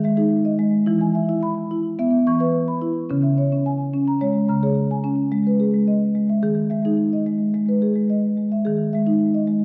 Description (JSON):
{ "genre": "world meditative", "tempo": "108 BPM", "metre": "4/4", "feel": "straight", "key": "G# minor", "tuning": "A4 = 442 Hz", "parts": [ { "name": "marimba with soft mallets", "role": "solo", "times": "0.0-9.6 s", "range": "C#3 to C#6", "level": "-20 LUFS", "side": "equal", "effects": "slapback echo" } ], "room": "wet echo chamber reverb, RT60 2.2 s", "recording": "dark, warm production", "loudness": "-20 LUFS", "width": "mono", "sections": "0.0-9.6 A section", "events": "none", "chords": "0.0 G#5; 0.9 E; 3.1 C#m; 5.3 G#m", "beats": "0.32 | 0.88 1.43 1.99 2.54 | 3.10 3.65 4.21 4.76 | 5.32 5.87 6.43 6.99 | 7.54 8.10 8.66 9.21" }